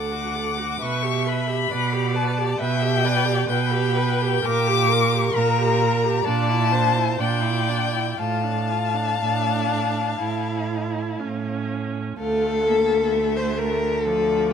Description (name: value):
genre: classical, slow romantic movement for string quartet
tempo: 59-68 BPM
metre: 4/4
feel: rubato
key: D minor from 4.4 s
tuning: A4 = 440 Hz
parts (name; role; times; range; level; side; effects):
- rich violin; melody; 0.0-14.5 s; D5 to D6; -25 LUFS; left 10 dB; none
- rich violin; second line; 0.0-14.5 s; G4 to F#5; -26 LUFS; left 4 dB; none
- rich viola; accompaniment; 0.0-14.5 s; F3 to B4; -27 LUFS; right 3 dB; none
- clear cello; bass; 0.0-14.5 s; D2 to B2; -24 LUFS; right 5 dB; none
room: light reverb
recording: close, detailed microphones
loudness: -20 LUFS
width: side -7 dB against mid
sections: 0.0-12.2 A section; 12.2-14.5 B section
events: none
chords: 0.0 D; 0.8 G/B; 4.4 Gm/Bb; 6.3 Em7b5/Bb; 8.2 Dm/A; 10.2 A; 12.2 Dm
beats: | 0.81 1.71 2.60 3.49 | 4.44 5.35 6.26 7.21 | 8.19 9.20 10.19 11.18 | 12.18 13.12 14.05